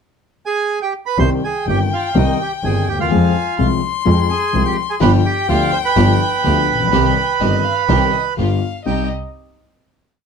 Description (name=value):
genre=tango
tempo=125 BPM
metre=4/4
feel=rubato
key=C harmonic minor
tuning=A4 = 440 Hz
part: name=bandoneon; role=melody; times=0.5-9.1 s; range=Eb4 to C6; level=-19 LUFS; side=right 6 dB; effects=none
part: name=warm violin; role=second line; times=1.2-9.1 s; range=Eb5 to C6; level=-23 LUFS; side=left 7 dB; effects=none
part: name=warm concert grand piano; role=accompaniment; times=1.2-9.1 s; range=G1 to Ab4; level=-18 LUFS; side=left 5 dB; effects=none
part: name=clear double bass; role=bass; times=1.2-9.1 s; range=G1 to F2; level=-18 LUFS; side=right 2 dB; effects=none
part: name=bright studio string section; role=stabs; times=5.0-9.1 s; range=B3 to G4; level=-26 LUFS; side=right 3 dB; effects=none
room=light reverb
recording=dark, warm production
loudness=-14 LUFS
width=side -6 dB against mid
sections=0.0-1.2 pickup bar; 1.2-8.9 A section; 8.9-10.3 final chord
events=none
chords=0.0 G; 1.2 Cm; 3.1 Fm; 5.0 G7; 6.9 Cm; 8.4 G7; 8.9 Cm